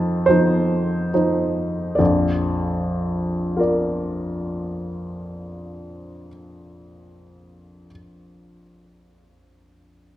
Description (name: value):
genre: classical, romantic nocturne for solo piano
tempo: 37 BPM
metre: 4/4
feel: rubato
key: unclear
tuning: A4 = 441 Hz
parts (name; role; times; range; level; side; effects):
- warm baby grand piano; solo; 0.0-10.2 s; Bb1 to A5; -20 LUFS; equal; none
room: moderate recital hall reverb, RT60 1.5 s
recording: none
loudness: -19 LUFS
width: side -13 dB against mid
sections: 0.0-2.0 A section; 2.0-8.4 B section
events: slowing down 0.0-2.0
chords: 0.0 F7; 2.0 Bb